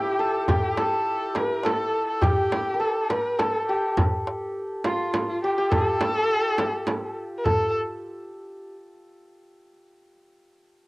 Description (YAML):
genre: Persian modal ensemble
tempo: 103 BPM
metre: 3/4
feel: straight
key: A dastgah shur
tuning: A4 = 440 Hz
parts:
  - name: santur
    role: melody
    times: 0.0-8.7 s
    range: E4 to Bb4+45c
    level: -25 LUFS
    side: equal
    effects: cassette tape, plate reverb
  - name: rich kamancheh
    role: second line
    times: 0.0-7.7 s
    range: F4 to Bb4+44c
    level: -28 LUFS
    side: left 1 dB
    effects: cassette tape, plate reverb
  - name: frame drum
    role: percussion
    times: 0.5-7.7 s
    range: none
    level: -28 LUFS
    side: right 2 dB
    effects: none
  - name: tombak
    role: percussion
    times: 0.5-7.7 s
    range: none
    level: -26 LUFS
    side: equal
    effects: none
room: moderate booth ambience, RT60 0.2 s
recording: home recording on cassette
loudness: -22 LUFS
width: side -23 dB against mid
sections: 0.0-7.5 A section; 7.5-9.2 B section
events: none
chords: none